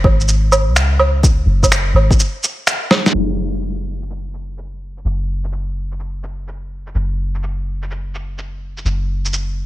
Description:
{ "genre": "future garage", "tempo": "126 BPM", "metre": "4/4", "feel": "swing 65% on 16ths", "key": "unclear", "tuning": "A4 = 440 Hz", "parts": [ { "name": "soft 808-style bass", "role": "bass", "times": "0.0-9.7 s", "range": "F#1 to C#2", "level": "-18 LUFS", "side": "equal", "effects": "tube saturation, sidechain pumping" }, { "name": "electronic kick drum", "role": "drums", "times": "0.0-2.2 s", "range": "none", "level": "-13 LUFS", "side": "equal", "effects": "none" }, { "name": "electronic woodblock, shaker, finger snaps and snare drum", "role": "drums", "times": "0.0-9.5 s", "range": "none", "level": "-16 LUFS", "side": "right 1 dB", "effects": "none" } ], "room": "light reverb", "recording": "low-pass filter", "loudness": "-15 LUFS", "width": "side -16 dB against mid", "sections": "0.0-3.1 A section; 3.1-9.7 B section", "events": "break 2.2-3.1; drum fill 2.9; band accent 3.0; filter sweep 3.1-9.7", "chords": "none" }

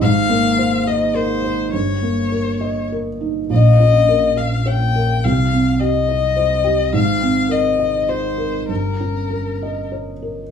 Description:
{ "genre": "neoclassical piano and strings", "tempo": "103 BPM", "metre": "3/4", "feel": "rubato", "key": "unclear", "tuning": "A4 = 437 Hz", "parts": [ { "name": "rich violin", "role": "melody", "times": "0.0-9.9 s", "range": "Bb4 to G5", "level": "-20 LUFS", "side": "left 8 dB", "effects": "none" }, { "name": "felt-muted upright piano", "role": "accompaniment", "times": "0.0-10.5 s", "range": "Bb1 to F5", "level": "-17 LUFS", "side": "right 1 dB", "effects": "none" }, { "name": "saturated sub bass", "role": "bass", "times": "0.0-10.5 s", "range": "G1 to C2", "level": "-27 LUFS", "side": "left 1 dB", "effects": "none" } ], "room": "light reverb", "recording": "small room reverb", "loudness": "-15 LUFS", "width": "side -7 dB against mid", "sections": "0.0-10.5 A section", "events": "none", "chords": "0.0 Abadd9; 1.7 Eb7/G; 3.5 Bbm; 5.2 Cm; 6.9 Abadd9; 8.7 Eb7/G" }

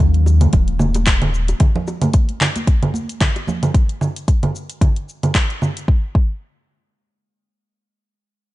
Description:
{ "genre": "organic downtempo", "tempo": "112 BPM", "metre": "4/4", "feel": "swing 56% on 16ths", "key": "unclear", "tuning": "A4 = 439 Hz", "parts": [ { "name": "warbly tape-like pad", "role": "sustained chords", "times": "0.0-1.6 s", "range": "Eb3 to Db5", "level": "-28 LUFS", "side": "right 1 dB", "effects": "none" }, { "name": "warm sub bass", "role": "bass", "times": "0.0-1.5 s", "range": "Eb1 to Eb2", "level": "-15 LUFS", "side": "equal", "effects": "sidechain pumping" }, { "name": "deep house drum kit", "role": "drums", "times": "0.0-5.9 s", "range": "congas, handclaps, hi-hat, shaker", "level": "-20 LUFS", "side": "right 1 dB", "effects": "none" }, { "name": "electronic kick drum", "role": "drums", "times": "0.0-6.3 s", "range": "none", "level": "-15 LUFS", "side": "equal", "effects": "none" }, { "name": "congas and bongos", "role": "percussion", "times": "0.2-3.6 s", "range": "none", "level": "-26 LUFS", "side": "right 2 dB", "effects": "none" } ], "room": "little or no reverb", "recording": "dark, warm production, nothing above 10.4 kHz", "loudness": "-15 LUFS", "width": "side -17 dB against mid", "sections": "0.0-5.9 A section; 5.9-8.5 B section", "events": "filter sweep on ambient pad 0.0-1.6", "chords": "0.0 Ebm7; 5.9 N.C." }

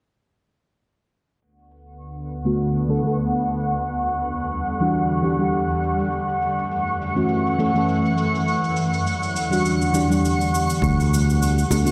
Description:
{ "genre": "sunset chillout", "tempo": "102 BPM", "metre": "4/4", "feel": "swing 55% on 16ths", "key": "unclear", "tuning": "A4 = 436 Hz", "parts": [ { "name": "shimmering ambient pad", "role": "sustained chords", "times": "2.0-11.9 s", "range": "D2 to F#5", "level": "-26 LUFS", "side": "equal", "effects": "chorus, built-in reverb" }, { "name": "cabasa", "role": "drums", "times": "1.4-11.9 s", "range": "none", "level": "-35 LUFS", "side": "equal", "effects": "none" }, { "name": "twinkling granular texture", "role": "texture", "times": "2.8-11.9 s", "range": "C#6", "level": "-32 LUFS", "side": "equal", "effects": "built-in reverb, subtle chorus" }, { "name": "mellow FM electric piano", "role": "accompaniment", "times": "2.4-11.9 s", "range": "D3 to A4", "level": "-24 LUFS", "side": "equal", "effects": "chorus, delay" }, { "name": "sustaining fretless electric bass", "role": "bass", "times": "10.8-11.9 s", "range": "D2", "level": "-20 LUFS", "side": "equal", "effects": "none" }, { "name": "electronic kick drum", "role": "drums", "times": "10.8-11.0 s", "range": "none", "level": "-29 LUFS", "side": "equal", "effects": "none" }, { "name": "bongos", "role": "percussion", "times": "11.7-11.8 s", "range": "none", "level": "-30 LUFS", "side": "equal", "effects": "none" } ], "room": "moderate plate reverb, RT60 1.3 s, small room ambience", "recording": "bright 1980s-style digital production, low-pass filter", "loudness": "-21 LUFS", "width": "mono", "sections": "1.4-10.8 A section; 10.8-11.9 B section", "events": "filter sweep 1.4-10.8", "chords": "1.4 D6; 3.8 Em9; 6.1 F#m7; 8.5 Em9; 10.8 D6" }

